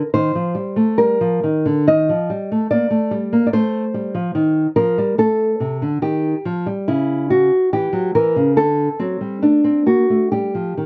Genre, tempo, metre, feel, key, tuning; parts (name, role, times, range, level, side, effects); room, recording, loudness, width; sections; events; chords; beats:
classical, baroque-style dance for nylon-string guitar; 71 BPM; 4/4; rubato; A4 = 441 Hz
nylon-string guitar; solo; 0.0-10.9 s; C3 to Eb5; -18 LUFS; equal
moderate booth ambience, RT60 0.3 s; worn, warbling old tape, cassette tape, warbly pitch drift; -18 LUFS; mono
0.0-10.9 A section
0.1 Eb; 3.5 Am7b5; 6.9 C#dim7; 8.6 D7; 10.3 N.C.
| 0.12 0.97 1.87 2.72 | 3.55 4.38 5.22 6.05 | 6.90 7.74 8.58 9.44 | 10.32